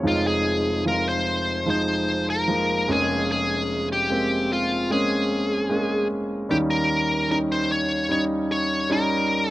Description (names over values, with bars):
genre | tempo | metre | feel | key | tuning
pop | 74 BPM | 4/4 | straight | unclear | A4 = 440 Hz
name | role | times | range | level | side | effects
warm concert grand piano | accompaniment | 0.0-9.5 s | F1 to Db5 | -23 LUFS | equal | slapback echo
smooth overdriven lead guitar | melody | 0.1-9.5 s | F4 to Db5 | -24 LUFS | left 1 dB | none
room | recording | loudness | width
little or no reverb | recorded outdoors, with no room sound | -20 LUFS | side -16 dB against mid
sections
0.0-9.5 A section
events
none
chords
0.1 Fm7; 2.9 Bbm7/F; 6.5 Eb7